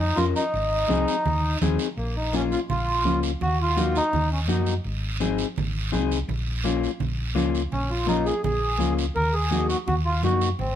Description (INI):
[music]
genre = latin, cumbia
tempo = 167 BPM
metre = 4/4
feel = straight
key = Bb minor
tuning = A4 = 440 Hz
[part]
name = mellow accordion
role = melody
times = 0.0-4.7, 7.7-10.8 s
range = Bb3 to Bb4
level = -25 LUFS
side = right 1 dB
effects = plate reverb
[part]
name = hollow-body short-scale fingered electric bass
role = bass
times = 0.0-10.8 s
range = Ab1 to Gb2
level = -26 LUFS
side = equal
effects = none
[part]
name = mellow electric guitar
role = accompaniment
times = 0.2-10.5 s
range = Bb3 to Bb4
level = -27 LUFS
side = left 8 dB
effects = none
[part]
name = congas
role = percussion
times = 0.2-10.8 s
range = none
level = -31 LUFS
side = right 4 dB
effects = none
[part]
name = guiro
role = percussion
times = 0.2-10.8 s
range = none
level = -35 LUFS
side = right 6 dB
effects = none
[sound]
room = light reverb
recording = lossy compression artefacts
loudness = -22 LUFS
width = side -10 dB against mid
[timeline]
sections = 0.0-2.0 A section; 2.0-10.8 B section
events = none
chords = 0.0 Bbm; 0.5 Ab; 2.0 Bbm; 3.4 Ebm; 4.8 Ab; 6.3 Bbm; 9.2 Ebm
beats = 0.18 | 0.54 0.90 1.25 1.61 | 1.97 2.33 2.69 3.05 | 3.41 3.77 4.13 4.49 | 4.85 5.21 5.57 5.93 | 6.29 6.64 7.00 7.36 | 7.72 8.08 8.44 8.80 | 9.16 9.52 9.87 10.23 | 10.59